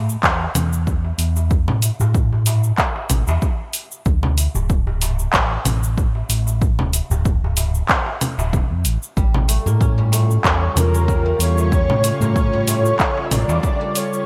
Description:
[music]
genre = organic downtempo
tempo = 94 BPM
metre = 4/4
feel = swing 55% on 16ths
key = A phrygian dominant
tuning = A4 = 440 Hz
[part]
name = smooth gliding synth bass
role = bass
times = 0.0-13.6 s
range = D1 to A2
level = -21 LUFS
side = equal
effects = sidechain pumping
[part]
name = deep house drum kit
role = drums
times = 0.1-14.2 s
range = congas, handclaps, hi-hat, shaker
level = -23 LUFS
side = equal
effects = gated reverb
[part]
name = electronic kick drum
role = drums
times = 0.2-13.8 s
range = none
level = -22 LUFS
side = equal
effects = none
[part]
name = darbuka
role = percussion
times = 0.4-13.8 s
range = none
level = -32 LUFS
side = equal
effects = none
[part]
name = ethereal airy pad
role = sustained chords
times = 10.1-14.2 s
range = C#3 to F4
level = -29 LUFS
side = equal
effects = ensemble chorus, built-in reverb, phaser, sidechain pumping
[part]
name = guzheng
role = arpeggios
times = 9.2-14.3 s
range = G3 to C#4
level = -31 LUFS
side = equal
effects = vintage 12-bit sampler grit, digital delay
[part]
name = breathy flute-like synth lead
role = melody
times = 10.4-14.3 s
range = Bb4 to E5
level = -24 LUFS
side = equal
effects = ensemble chorus, digital delay
[sound]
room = light reverb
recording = bright 1980s-style digital production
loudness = -18 LUFS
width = mono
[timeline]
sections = 0.0-14.3 A section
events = none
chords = 0.0 A5; 4.1 D5; 9.2 A7b9b13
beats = 0.23 0.87 | 1.51 2.15 2.79 3.42 | 4.06 4.70 5.34 5.98 | 6.62 7.25 7.89 8.53 | 9.17 9.81 10.44 11.08 | 11.72 12.36 13.00 13.64

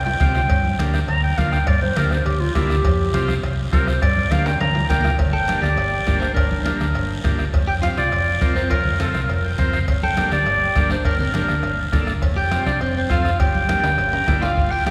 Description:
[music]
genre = latin, cumbia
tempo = 205 BPM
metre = 4/4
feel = straight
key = G minor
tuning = A4 = 440 Hz
[part]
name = warm clarinet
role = melody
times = 0.0-14.9 s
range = F4 to Bb5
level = -25 LUFS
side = equal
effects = none
[part]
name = hollow-body short-scale fingered electric bass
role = bass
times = 0.0-14.7 s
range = F1 to G2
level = -25 LUFS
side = equal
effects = none
[part]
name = congas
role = percussion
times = 0.1-14.9 s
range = none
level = -32 LUFS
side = equal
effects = none
[part]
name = timbales and cowbell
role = percussion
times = 0.1-14.5 s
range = none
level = -36 LUFS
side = equal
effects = none
[part]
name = combo organ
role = accompaniment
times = 0.2-14.9 s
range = Bb3 to Bb5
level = -30 LUFS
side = equal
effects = none
[part]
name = bombo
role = percussion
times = 0.2-14.9 s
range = none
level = -25 LUFS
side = equal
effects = none
[part]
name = guiro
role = percussion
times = 0.2-14.9 s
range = none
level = -39 LUFS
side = equal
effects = none
[part]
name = clean electric guitar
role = second line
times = 5.3-14.9 s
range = C4 to A4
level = -33 LUFS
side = equal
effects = none
[sound]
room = wet church reverb, RT60 2.7 s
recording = recorded in a church or concert hall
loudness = -19 LUFS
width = mono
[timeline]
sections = 0.0-5.2 A section; 5.2-14.6 B section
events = drum fill 0.0-0.5, 4.5-5.2, 13.8-14.6; clarinet solo 0.0-5.2; transistor combo organ fill 9.3-9.9, 14.0-14.6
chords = 0.5 Gm; 2.8 Fsus2; 4.0 Gm; 7.5 Fsus2; 9.9 Gmadd9; 12.2 Fsus2; 13.4 Gm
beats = 0.20 | 0.50 0.79 1.09 1.38 | 1.67 1.97 2.26 2.56 | 2.85 3.14 3.44 3.73 | 4.02 4.31 4.61 4.90 | 5.19 5.49 5.78 6.07 | 6.37 6.66 6.95 7.24 | 7.54 7.83 8.12 8.41 | 8.71 9.00 9.29 9.59 | 9.88 10.17 10.46 10.76 | 11.05 11.34 11.64 11.93 | 12.22 12.52 12.81 13.10 | 13.40 13.69 13.98 14.28 | 14.57 14.86

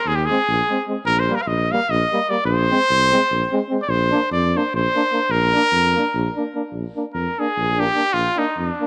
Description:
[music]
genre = balkan folk, Balkan brass band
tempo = 296 BPM (eighths)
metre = 7/8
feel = straight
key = Bb mixolydian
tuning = A4 = 440 Hz
[part]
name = clear trumpet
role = melody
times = 0.0-8.9 s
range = D4 to F5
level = -21 LUFS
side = equal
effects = none
[part]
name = mellow tuba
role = bass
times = 0.1-8.7 s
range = Bb1 to F2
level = -25 LUFS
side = equal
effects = none
[part]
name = clear euphonium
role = accompaniment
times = 0.3-8.9 s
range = G3 to Bb3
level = -31 LUFS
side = equal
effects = none
[part]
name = warm trombone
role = accompaniment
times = 0.3-8.9 s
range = Bb3 to D4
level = -29 LUFS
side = equal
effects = none
[sound]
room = light reverb, small room ambience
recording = none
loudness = -19 LUFS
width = mono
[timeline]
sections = 0.0-6.7 A section; 6.7-8.9 B section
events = trumpet solo 6.7-8.9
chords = 0.0 Ab; 1.0 Eb/Bb; 2.5 Bb7sus2; 3.9 Bb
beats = 0.04 0.24 0.44 0.64 0.85 | 1.05 1.25 1.45 1.66 1.86 2.06 2.26 | 2.46 2.67 2.87 3.07 3.27 3.48 3.68 | 3.88 4.08 4.29 4.49 4.69 4.89 5.10 | 5.30 5.50 5.71 5.91 6.11 6.32 6.52 | 6.72 6.92 7.13 7.33 7.53 7.74 7.94 | 8.14 8.35 8.55 8.75

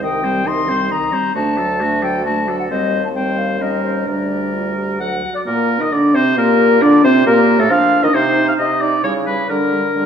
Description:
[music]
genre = quick classical-period movement for wind quintet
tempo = 134 BPM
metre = 3/4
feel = rubato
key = G minor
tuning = A4 = 439 Hz
[part]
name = concert flute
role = melody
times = 0.0-10.1 s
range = A4 to C6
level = -22 LUFS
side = left 6 dB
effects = none
[part]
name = clear oboe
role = second line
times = 0.0-10.1 s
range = F#4 to F#5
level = -19 LUFS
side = equal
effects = none
[part]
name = dark clarinet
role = accompaniment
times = 0.0-10.1 s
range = C4 to A4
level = -23 LUFS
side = right 4 dB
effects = none
[part]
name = mellow French horn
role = accompaniment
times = 0.0-10.1 s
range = Eb3 to F4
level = -19 LUFS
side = left 1 dB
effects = none
[part]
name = mellow bassoon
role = bass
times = 0.0-10.1 s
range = C2 to F3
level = -21 LUFS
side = right 2 dB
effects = none
[sound]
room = moderate scoring stage reverb, RT60 2.0 s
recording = small room ambience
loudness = -13 LUFS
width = side -7 dB against mid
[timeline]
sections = 0.0-5.5 A section; 5.5-10.1 B section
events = none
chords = 0.0 Cm; 1.4 D; 2.7 Cm/Eb; 3.6 Eb7; 4.1 Gm/D; 5.0 D; 5.5 Gm/Bb; 6.8 Gm; 8.1 Cm; 9.0 C#m7b5; 9.5 Gm/D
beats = | 0.02 0.46 0.91 | 1.35 1.80 2.25 | 2.70 3.15 3.60 | 4.07 4.53 5.00 | 5.46 5.92 6.37 | 6.81 7.26 7.71 | 8.15 8.59 9.04 | 9.49 9.95

